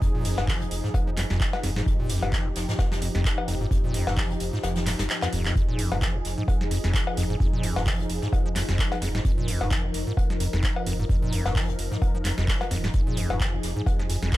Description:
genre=acid house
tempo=130 BPM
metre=4/4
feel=swing 56% on 16ths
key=F minor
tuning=A4 = 440 Hz
part: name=warm analog pad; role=sustained chords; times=0.0-14.4 s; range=F3 to Bb4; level=-32 LUFS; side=equal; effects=chorus, sidechain pumping
part: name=acid bass, square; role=riff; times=0.0-14.3 s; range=F2 to F3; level=-29 LUFS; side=equal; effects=tube saturation, sidechain pumping
part: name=round analog bass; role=bass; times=0.0-14.3 s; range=Eb1 to F1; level=-31 LUFS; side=equal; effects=tube saturation, sidechain pumping
part: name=electronic kick drum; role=drums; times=0.0-14.4 s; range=none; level=-25 LUFS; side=equal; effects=overdrive
part: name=vintage brush drum kit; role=drums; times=0.0-14.4 s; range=hi-hat, snare drum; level=-39 LUFS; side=left 2 dB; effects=sidechain pumping on hats, high-pass filter on hats, high-pass filter on snare, high-pass filter on room
part: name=booming analog drum machine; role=drums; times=0.2-14.4 s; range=cowbell, handclaps, hi-hat, snare drum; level=-31 LUFS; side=left 1 dB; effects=overdrive
room=little or no reverb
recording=none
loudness=-23 LUFS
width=side -16 dB against mid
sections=0.0-14.4 A section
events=kick drops out 4.6-5.6; drum fill 5.2-5.6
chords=0.0 Fm7

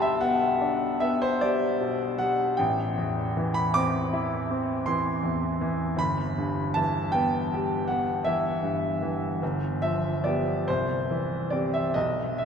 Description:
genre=classical, romantic nocturne for solo piano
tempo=41-56 BPM (dotted quarters)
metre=9/8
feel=rubato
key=E minor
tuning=A4 = 441 Hz
part: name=bright grand piano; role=solo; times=0.0-12.4 s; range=G1 to D6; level=-24 LUFS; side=equal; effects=none
room=wet cathedral reverb, RT60 5.3 s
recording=in a vast, echoing space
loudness=-24 LUFS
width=side -7 dB against mid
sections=0.0-12.4 A section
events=none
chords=0.0 G/B; 2.6 Am7; 6.0 Em/G; 9.4 G7; 10.7 C; 11.9 B5

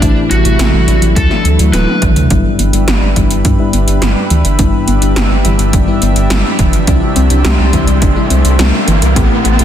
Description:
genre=synthwave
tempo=105 BPM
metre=4/4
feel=straight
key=G major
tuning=A4 = 440 Hz
part: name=lead guitar through a small cranked amp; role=melody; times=0.0-2.0 s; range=D4 to B4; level=-18 LUFS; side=equal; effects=overdrive, ping-pong delay
part: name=lush unison pad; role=sustained chords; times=0.0-9.6 s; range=C3 to A5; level=-18 LUFS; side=equal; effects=chorus, sidechain pumping
part: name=FM electric piano with soft pad layer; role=stabs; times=0.0-9.6 s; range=G2 to G4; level=-17 LUFS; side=left 5 dB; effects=chorus, low-pass filter, digital delay
part: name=round analog bass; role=bass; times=0.0-9.6 s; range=D1 to G2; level=-12 LUFS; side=equal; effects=none
part: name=80s electronic pad drums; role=drums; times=0.0-9.6 s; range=hi-hat, snare drum, toms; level=-17 LUFS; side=equal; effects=gated reverb on snare and toms, overdrive
part: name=electronic kick drum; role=drums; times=0.0-9.3 s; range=none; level=-14 LUFS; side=equal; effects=overdrive
part: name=warbly dusty pluck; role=arpeggios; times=2.3-9.6 s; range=E3 to D4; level=-20 LUFS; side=right 1 dB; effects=chorus, cassette tape, digital delay
part: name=riser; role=sound effects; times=4.3-9.6 s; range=none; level=-21 LUFS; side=equal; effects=none
room=light reverb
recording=dense, heavily limited modern master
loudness=-9 LUFS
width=side -10 dB against mid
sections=0.0-2.3 A section; 2.3-9.6 B section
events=drum fill 1.7-2.3; filter sweep on FM electric piano 2.3-9.6; riser 4.3-9.6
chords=0.0 Am7; 1.2 Dadd9; 2.3 G6; 6.9 Cadd9

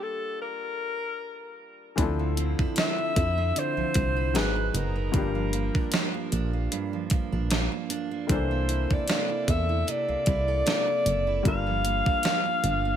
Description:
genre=contemporary R&B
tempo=76 BPM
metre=4/4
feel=swing 54% on 16ths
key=unclear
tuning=A4 = 440 Hz
part: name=breathy alto saxophone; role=melody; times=0.0-13.0 s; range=A4 to F5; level=-28 LUFS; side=left 2 dB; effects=tape echo
part: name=felt-muted upright piano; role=accompaniment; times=0.0-13.0 s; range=Eb3 to Bb4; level=-34 LUFS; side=left 7 dB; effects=none
part: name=picked steel-string acoustic guitar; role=arpeggios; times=2.0-13.0 s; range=G2 to A4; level=-32 LUFS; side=right 9 dB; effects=none
part: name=solid FM bass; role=bass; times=2.0-13.0 s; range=Gb1 to F2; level=-28 LUFS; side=right 1 dB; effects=none
part: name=gated 80s digital drum machine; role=drums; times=2.0-12.8 s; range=hi-hat, kick drum, snare drum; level=-27 LUFS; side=equal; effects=gated reverb, gated reverb snare
room=light reverb, small room ambience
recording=none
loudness=-24 LUFS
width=side -9 dB against mid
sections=0.0-13.0 A section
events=none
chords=0.0 Gm7; 2.0 Dm9; 4.3 Abm7; 5.1 Gm7; 8.3 C13; 11.5 Gm7

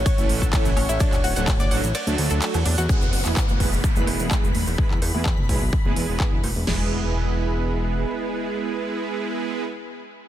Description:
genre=progressive house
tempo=127 BPM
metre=4/4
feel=straight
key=E mixolydian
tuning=A4 = 440 Hz
part: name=soft octave-layered synth lead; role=melody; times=0.0-2.8 s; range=C#5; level=-31 LUFS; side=left 2 dB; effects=chorus, phaser, sidechain pumping, ping-pong delay
part: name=fat analog bass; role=bass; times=0.0-8.1 s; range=D1 to E2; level=-25 LUFS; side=equal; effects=sidechain pumping
part: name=twinkling granular texture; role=texture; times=0.0-6.7 s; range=F#5 to B5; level=-38 LUFS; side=equal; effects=built-in reverb, sidechain pumping
part: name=analog pluck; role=arpeggios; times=0.1-2.9 s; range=C#4 to F#6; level=-31 LUFS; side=left 2 dB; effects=chorus, sidechain pumping, ping-pong delay
part: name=big-room dance drum kit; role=drums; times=0.1-6.8 s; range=crash cymbal, kick drum, snare drum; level=-22 LUFS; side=equal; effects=small room ambience
part: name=big-room dance drum kit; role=drums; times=0.1-6.5 s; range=handclaps, hi-hat, ride cymbal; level=-30 LUFS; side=right 1 dB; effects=small room ambience
part: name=egg shaker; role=percussion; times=0.1-4.8 s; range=none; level=-36 LUFS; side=right 2 dB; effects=none
part: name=soft supersaw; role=stabs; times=0.2-9.6 s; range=E3 to B4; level=-28 LUFS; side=right 4 dB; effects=sidechain pumping, ping-pong delay
part: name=congas, woodblock and cowbell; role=percussion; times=0.2-6.5 s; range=none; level=-34 LUFS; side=right 3 dB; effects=sidechain pumping on perc
part: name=downlifter and impact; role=sound effects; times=2.9-9.7 s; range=none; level=-32 LUFS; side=equal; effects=none
room=digital ambience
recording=dense, heavily limited modern master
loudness=-20 LUFS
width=side -12 dB against mid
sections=0.0-2.9 A section; 2.9-6.7 B section; 6.7-10.3 C section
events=drop 0.0-2.9; kick drops out 1.9-2.9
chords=0.0 A; 1.0 D; 2.9 E

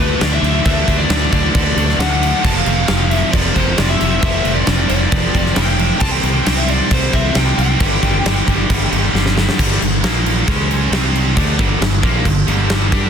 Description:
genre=hard rock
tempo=135 BPM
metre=4/4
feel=straight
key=unclear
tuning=A4 = 440 Hz
part: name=lead guitar through a small cranked amp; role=melody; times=0.0-9.1 s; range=B4 to A5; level=-21 LUFS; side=left 2 dB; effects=overdrive, slapback echo
part: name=distorted electric guitar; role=riff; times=0.0-13.1 s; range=F2 to G4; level=-23 LUFS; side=equal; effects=distortion
part: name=scooped high-gain guitar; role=riff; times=0.0-13.1 s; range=F2 to G4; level=-22 LUFS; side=left 13 dB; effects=distortion
part: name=scooped high-gain guitar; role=riff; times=0.0-13.1 s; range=F2 to G4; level=-22 LUFS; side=right 11 dB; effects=distortion
part: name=fingered electric bass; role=bass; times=0.0-13.1 s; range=F1 to G2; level=-18 LUFS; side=equal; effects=none
part: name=huge arena drum kit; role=drums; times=0.2-13.0 s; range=crash cymbal, kick drum, snare drum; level=-17 LUFS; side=equal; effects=soft clipping on kick, soft clipping on snare
room=studio reverb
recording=dense, heavily limited modern master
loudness=-13 LUFS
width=side -7 dB against mid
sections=0.0-9.6 A section; 9.6-13.1 B section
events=drum fill 9.1-9.6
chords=0.0 D; 2.4 F; 6.0 C; 7.8 G; 9.6 G5; 10.0 Bb5; 10.5 C#5; 10.9 C5; 11.4 G5

